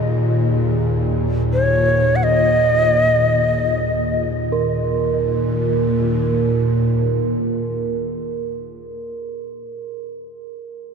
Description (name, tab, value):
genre	world meditative, free-time meditation music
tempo	free time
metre	none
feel	none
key	unclear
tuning	A4 = 439 Hz
part	evolving wavetable pad	drone	0.0-8.8 s	Eb2 to Bb2	-19 LUFS	equal	ensemble chorus, built-in reverb
part	quartz singing bowl	texture	0.0-8.8 s	Ab4 to Bb4	-26 LUFS	right 7 dB	none
part	breathy hollow Native American-style cedar flute	melody	1.5-4.3 s	Db5 to Gb5	-19 LUFS	left 1 dB	ping-pong delay
room	moderate huge ambient reverb, RT60 4.8 s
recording	dark, warm production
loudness	-16 LUFS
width	side -6 dB against mid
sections	0.0-4.5 A section; 4.5-8.4 B section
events	none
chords	none